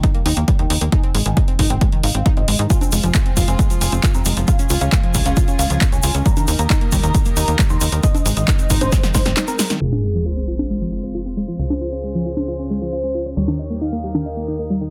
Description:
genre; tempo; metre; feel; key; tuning
uplifting trance; 135 BPM; 4/4; straight; F minor; A4 = 439 Hz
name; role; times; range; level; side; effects
supersaw stab; melody; 0.0-9.7 s; Bb4 to C6; -31 LUFS; equal; sidechain pumping, low-pass filter, tape echo
analog pluck; arpeggios; 0.0-14.9 s; Eb3 to F4; -27 LUFS; equal; chorus, sidechain pumping, tape echo
electronic kick drum; drums; 0.0-9.2 s; none; -19 LUFS; equal; none
punchy analog drum machine; drums; 0.0-14.2 s; congas, crash cymbal, handclaps, hi-hat, snare drum; -25 LUFS; equal; none
tight sequencer bass; bass; 0.3-14.9 s; F1 to Ab2; -24 LUFS; equal; tube saturation, sidechain pumping
rich chamber string section; sustained chords; 2.7-14.9 s; Db3 to Bb4; -33 LUFS; equal; sidechain pumping, low-pass filter
tube shaker; percussion; 2.7-9.8 s; none; -30 LUFS; equal; none
warm velvety synth lead; second line; 9.8-14.4 s; Ab4 to F5; -31 LUFS; equal; chorus, tape echo
sub drop; sound effects; 9.8-11.6 s; none; -25 LUFS; equal; none
room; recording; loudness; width
digital ambience; dense, heavily limited modern master, low-pass filter; -18 LUFS; mono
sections
0.0-9.8 A section; 9.8-14.9 B section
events
drum fill 8.9-9.8; kick drops out 9.4-9.8; band accent 9.7; impact 9.8-11.6; filter sweep 9.8-14.9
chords
0.0 Eb; 0.9 Ab; 2.7 Fm; 4.5 Db; 6.3 Eb; 8.0 Ab; 9.8 Fm; 11.6 Db; 13.4 Eb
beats
0.04 0.48 | 0.92 1.37 1.81 2.26 | 2.70 3.15 3.59 4.04 | 4.48 4.92 5.37 5.81 | 6.26 6.70 7.15 7.59 | 8.04 8.48 8.92 9.37 | 9.81 10.26 10.70 11.15 | 11.59 12.04 12.48 12.92 | 13.37 13.81 14.26 14.70

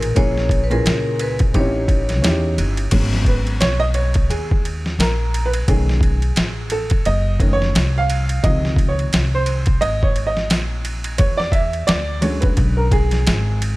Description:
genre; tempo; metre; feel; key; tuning
hip hop, jazz-hop; 87 BPM; 4/4; swing 58% on 16ths; unclear; A4 = 440 Hz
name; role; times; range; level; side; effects
vibraphone with medium hard mallets; melody; 0.0-2.5 s; A#4 to C#5; -24 LUFS; left 2 dB; analog delay
dark baby grand piano; accompaniment; 0.0-13.8 s; A#2 to E#5; -22 LUFS; right 1 dB; none
upright bass; bass; 0.0-13.8 s; F#1 to E2; -20 LUFS; equal; none
boom bap sampler-style drum kit; drums; 0.0-13.8 s; crash cymbal, hi-hat, kick drum, ride cymbal, snare drum; -20 LUFS; equal; overdrive
room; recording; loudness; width
small room ambience; none; -16 LUFS; side -20 dB against mid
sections
0.0-2.9 A section; 2.9-13.8 B section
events
grand piano solo 2.9-13.8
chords
0.2 A#m7b5; 1.5 A7#11; 2.9 G#m11; 5.7 B9; 8.4 C#maj9; 11.2 E13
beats
| 0.16 0.85 1.54 2.23 | 2.92 3.61 4.30 4.99 | 5.68 6.37 7.06 7.75 | 8.44 9.13 9.82 10.51 | 11.20 11.89 12.58 13.27

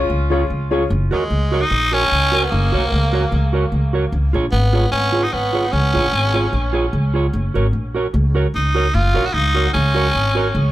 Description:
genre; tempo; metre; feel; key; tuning
ska; 149 BPM; 4/4; swing 55% on 8ths; F# major; A4 = 440 Hz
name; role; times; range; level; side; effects
mellow horn section; melody; 0.0-0.5 s; C#4 to E#4; -30 LUFS; left 2 dB; dub echo, plate reverb
mellow electric guitar; accompaniment; 0.0-10.5 s; E#4 to C#5; -22 LUFS; right 3 dB; none
dark upright piano; stabs; 0.0-0.8 s; C#4 to C#5; -22 LUFS; left 6 dB; none
upright bass; bass; 0.0-10.7 s; F#1 to D#2; -18 LUFS; equal; none
breathy tenor saxophone; melody; 1.1-10.7 s; G#3 to F#4; -19 LUFS; equal; dub echo
room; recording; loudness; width
light reverb; none; -15 LUFS; side -14 dB against mid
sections
0.9-10.7 A section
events
tenor saxophone solo 0.9-10.7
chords
0.0 C#; 0.9 F#; 4.1 C#; 7.3 F#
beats
0.09 0.49 | 0.89 1.30 1.70 2.10 | 2.50 2.91 3.31 3.71 | 4.11 4.51 4.92 5.32 | 5.72 6.12 6.52 6.93 | 7.33 7.73 8.13 8.53 | 8.93 9.34 9.74 10.14 | 10.54

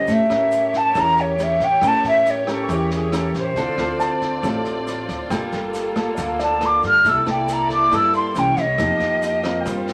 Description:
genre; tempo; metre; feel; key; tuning
bossa nova; 138 BPM; 4/4; straight; unclear; A4 = 444 Hz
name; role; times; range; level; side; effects
breathy hollow jazz flute; melody; 0.0-9.7 s; G4 to F6; -20 LUFS; equal; none
clear grand piano; accompaniment; 0.0-9.9 s; C5 to C#6; -32 LUFS; equal; none
nylon-string guitar; accompaniment; 0.0-9.9 s; G2 to Bb4; -27 LUFS; equal; none
rich studio string section; sustained chords; 0.0-9.9 s; Bb3 to Eb5; -32 LUFS; equal; none
upright bass; bass; 0.0-9.9 s; G1 to A2; -32 LUFS; equal; none
vintage brush drum kit; drums; 0.1-9.9 s; kick drum, rim click, snare drum; -36 LUFS; equal; none
egg shaker; percussion; 0.1-9.9 s; none; -51 LUFS; equal; none
room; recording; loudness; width
wet studio ambience, RT60 0.5 s; none; -20 LUFS; mono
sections
0.0-9.9 A section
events
flute solo 0.0-9.9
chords
0.1 A7b9; 3.6 Dm7; 5.3 Gm9; 7.0 C13; 8.4 C7b9; 8.8 F9sus4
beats
| 0.08 0.52 0.95 1.39 | 1.82 2.26 2.69 3.13 | 3.56 4.00 4.43 4.87 | 5.31 5.74 6.18 6.61 | 7.05 7.48 7.92 8.35 | 8.79 9.22 9.66

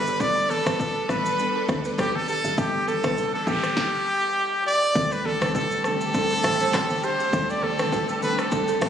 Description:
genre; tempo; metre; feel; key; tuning
afrobeats; 101 BPM; 4/4; swing 55% on 16ths; G major; A4 = 443 Hz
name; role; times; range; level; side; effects
bright trumpet; melody; 0.0-8.9 s; G4 to D5; -24 LUFS; equal; digital delay
marimba with medium mallets; accompaniment; 0.0-8.9 s; G3 to A4; -31 LUFS; equal; none
clear symphonic string section; sustained chords; 0.0-8.9 s; D3 to B4; -32 LUFS; equal; none
balafon; riff; 0.0-8.8 s; G4 to C5; -32 LUFS; right 5 dB; digital delay
woody log drum bass; bass; 0.0-8.9 s; F#1 to D2; -32 LUFS; equal; none
deep house drum kit; drums; 0.1-8.9 s; handclaps, hi-hat, kick drum, rim click, shaker, snare drum; -29 LUFS; equal; overdrive
congas; percussion; 0.2-8.9 s; none; -34 LUFS; left 2 dB; none
noise sweep and impact; sound effects; 3.1-7.3 s; none; -37 LUFS; right 3 dB; none
room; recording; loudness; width
light reverb, small room ambience; recorded on a phone in the room, studio reverb, compression; -21 LUFS; side -8 dB against mid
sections
0.0-5.0 A section; 5.0-8.9 B section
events
noise sweep 3.1-5.0; impact 5.0-7.3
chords
0.0 Gadd9; 5.0 D7sus4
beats
| 0.20 0.80 1.39 1.99 | 2.58 3.17 3.77 4.36 | 4.96 5.55 6.14 6.74 | 7.33 7.93 8.52

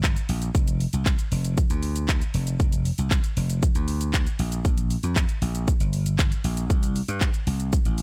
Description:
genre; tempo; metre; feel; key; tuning
dance-pop; 117 BPM; 4/4; straight; F major; A4 = 442 Hz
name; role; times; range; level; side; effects
slap bass; bass; 0.0-8.0 s; F1 to G2; -28 LUFS; equal; sidechain pumping
pop drum kit; drums; 0.0-8.0 s; handclaps, hi-hat, kick drum, shaker; -26 LUFS; equal; none
room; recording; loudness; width
little or no reverb; none; -24 LUFS; mono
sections
0.0-8.0 A section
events
none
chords
none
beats
0.04 | 0.55 1.06 1.57 2.09 | 2.60 3.11 3.62 4.14 | 4.65 5.16 5.68 6.19 | 6.70 7.21 7.73

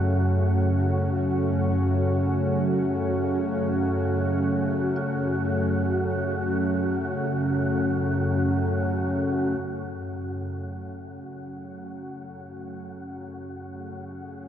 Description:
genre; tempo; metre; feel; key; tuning
dark ambient drone; free time; none; none; F# minor; A4 = 441 Hz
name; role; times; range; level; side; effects
sweeping resonant pad; sustained chords; 0.0-14.5 s; F#3 to G#4; -27 LUFS; equal; chorus
dark detuned synth bell; arpeggios; 0.0-14.5 s; none; barely audible; none; none
organ-like drone; drone; 0.0-14.5 s; F#2 to C#3; -27 LUFS; equal; ensemble chorus, built-in reverb
wind-like tuned noise texture; texture; 0.0-14.5 s; F#4; -34 LUFS; right 1 dB; built-in reverb
room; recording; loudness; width
wet cathedral reverb, RT60 6.0 s; dark, warm production; -23 LUFS; side -9 dB against mid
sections
0.0-9.6 A section; 9.6-14.5 A section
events
filter sweep on synth drone 0.0-9.6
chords
0.0 F#madd9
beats
free time

